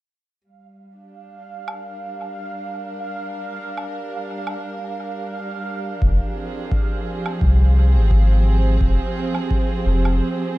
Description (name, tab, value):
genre	ambient dub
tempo	86 BPM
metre	4/4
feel	swing 56% on 16ths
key	unclear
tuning	A4 = 440 Hz
part	dark chamber string section	sustained chords	0.4-10.6 s	F3 to Bb4	-27 LUFS	right 2 dB	none
part	bubbling stepped-filter texture	texture	0.4-10.2 s	F5	-33 LUFS	right 2 dB	chorus, built-in reverb
part	woodblock	drums	1.7-10.2 s	none	-33 LUFS	right 1 dB	dub echo
part	soft dub sub bass	bass	6.0-10.2 s	F1 to C2	-15 LUFS	equal	tube saturation
part	electronic kick drum	drums	6.0-9.7 s	none	-22 LUFS	equal	overdrive
room	studio ambience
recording	dark, warm production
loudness	-18 LUFS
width	side -18 dB against mid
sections	0.4-10.6 A section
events	fade-in on string section 0.4-10.6; break 10.2-10.6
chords	0.4 Gm7; 6.0 Fm